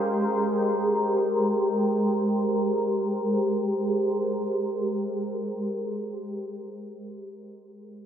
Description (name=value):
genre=hip hop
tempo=free time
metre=none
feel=none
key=Ab major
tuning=A4 = 439 Hz
part: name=shimmering ambient pad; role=sustained chords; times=0.0-7.0 s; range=Ab3 to C5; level=-24 LUFS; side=equal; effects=chorus, built-in reverb
room=moderate spring reverb, RT60 1.1 s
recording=low-pass filter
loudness=-24 LUFS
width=side -9 dB against mid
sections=0.0-2.7 A section; 2.7-6.7 B section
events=filter sweep 0.0-2.7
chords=0.0 Abmaj9